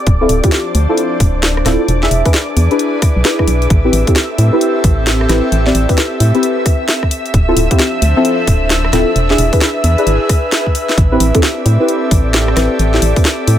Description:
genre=UK garage, two-step garage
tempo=132 BPM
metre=4/4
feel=swing 63% on 16ths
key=A minor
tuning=A4 = 439 Hz
part: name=soft string machine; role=sustained chords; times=0.0-13.6 s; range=D5 to E6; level=-23 LUFS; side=right 1 dB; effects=ensemble chorus, sidechain pumping
part: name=airy breathy pad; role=texture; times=0.0-13.6 s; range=F3 to E5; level=-20 LUFS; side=equal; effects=chorus, sidechain pumping
part: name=organ-like FM bass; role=bass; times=0.1-13.6 s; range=D1 to A2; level=-13 LUFS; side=equal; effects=sidechain pumping
part: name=electronic kick drum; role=drums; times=0.1-13.2 s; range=none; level=-13 LUFS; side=equal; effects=none
part: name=house drum kit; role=drums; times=0.1-13.6 s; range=hi-hat, rim click, snare drum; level=-17 LUFS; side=left 1 dB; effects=overdrive
part: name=deep mellow chord stab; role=stabs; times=0.2-13.3 s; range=C4 to E5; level=-16 LUFS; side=left 1 dB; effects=chorus, dub echo
room=light reverb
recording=none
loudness=-10 LUFS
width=side -11 dB against mid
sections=0.0-13.6 A section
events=drum fill 10.5-11.0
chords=0.0 Dm9; 1.9 E7; 3.7 Am7; 7.1 Dm9; 9.2 E7; 11.0 Am7

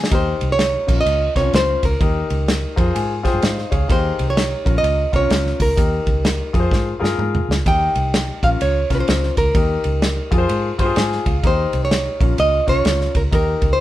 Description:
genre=uptempo 1960s-style soul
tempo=127 BPM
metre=4/4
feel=swing 63% on 8ths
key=Eb mixolydian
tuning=A4 = 440 Hz
part: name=dark concert grand piano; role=accompaniment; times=0.0-13.8 s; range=C4 to C6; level=-24 LUFS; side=left 4 dB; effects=none
part: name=warm soul drum kit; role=drums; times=0.0-13.7 s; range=crash cymbal, hi-hat, kick drum, ride cymbal, snare drum, toms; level=-20 LUFS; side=equal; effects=none
part: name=nylon-string guitar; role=melody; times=0.1-13.8 s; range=Bb4 to G5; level=-20 LUFS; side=right 1 dB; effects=none
part: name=vintage muted fingered electric bass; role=bass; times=0.1-13.8 s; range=Bb1 to Ab2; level=-21 LUFS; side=equal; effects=none
room=moderate studio reverb, RT60 0.8 s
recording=band playing live in one room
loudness=-16 LUFS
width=side -14 dB against mid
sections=0.1-13.8 A section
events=grand piano fill 2.5-3.9, 10.5-11.4; drum fill 6.7-7.7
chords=0.1 Eb; 0.8 Bbm; 2.0 Eb; 2.7 Fm; 3.9 Eb; 4.6 Bbm; 5.8 Eb; 6.5 Fm; 7.7 Eb; 8.4 Bbm; 9.6 Eb; 10.3 Fm; 11.4 Eb; 12.1 Bbm

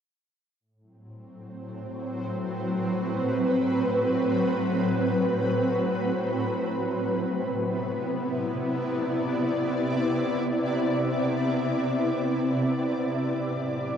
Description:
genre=ambient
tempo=free time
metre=none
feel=none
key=A dorian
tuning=A4 = 440 Hz
part: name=shimmering ambient pad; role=solo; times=1.6-14.0 s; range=A2 to D5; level=-24 LUFS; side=equal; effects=chorus, built-in reverb, tape echo
room=wet studio reverb, RT60 0.7 s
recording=home recording on cassette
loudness=-24 LUFS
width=side -8 dB against mid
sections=0.6-14.0 A section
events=none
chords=0.6 Am69; 6.8 Cmaj9; 12.9 Am69

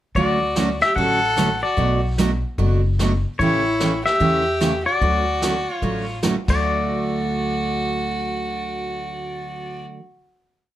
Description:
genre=country, western swing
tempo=148 BPM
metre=4/4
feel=swing 64% on 8ths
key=D major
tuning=A4 = 440 Hz
part: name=pedal steel guitar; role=melody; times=0.2-9.9 s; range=C#5 to F#5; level=-22 LUFS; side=left 3 dB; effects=none
part: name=warm fiddle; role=second line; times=0.2-9.8 s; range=E4 to A4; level=-25 LUFS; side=equal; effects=none
part: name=picked steel-string acoustic guitar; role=accompaniment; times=0.2-10.0 s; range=B2 to G4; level=-23 LUFS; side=right 3 dB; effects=none
part: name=upright bass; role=bass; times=0.2-9.8 s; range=F#1 to E2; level=-25 LUFS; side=left 1 dB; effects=none
part: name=vintage brush drum kit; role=drums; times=0.2-6.6 s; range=brushed snare drum, crash cymbal, hi-hat, kick drum, snare drum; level=-28 LUFS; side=equal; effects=none
room=moderate studio reverb, RT60 0.6 s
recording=none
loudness=-18 LUFS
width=side -13 dB against mid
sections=0.2-6.6 A section; 6.6-9.9 final hit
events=none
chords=0.2 Dmaj7; 1.8 Bm7; 3.4 A7; 5.0 Dmaj7; 6.4 D

